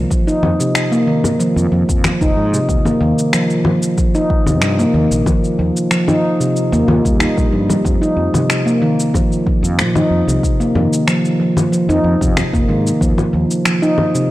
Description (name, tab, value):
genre	organic downtempo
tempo	93 BPM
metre	4/4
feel	straight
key	F minor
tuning	A4 = 440 Hz
part	handpan	arpeggios	0.0-14.3 s	C3 to F4	-15 LUFS	equal	analog delay
part	fretless electric bass	bass	0.0-13.4 s	F1 to Bb2	-18 LUFS	equal	sidechain pumping
part	electronic cabasa, congas and finger snaps	drums	0.1-14.3 s	none	-20 LUFS	left 2 dB	none
part	electronic kick drum	drums	0.1-13.1 s	none	-17 LUFS	equal	none
room	light reverb, digital ambience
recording	dry, gritty hardware recording, transformer saturation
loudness	-13 LUFS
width	side -16 dB against mid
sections	0.0-14.3 A section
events	none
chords	0.0 F7(no3); 2.7 Eb6; 7.8 F7(no3); 13.0 Eb5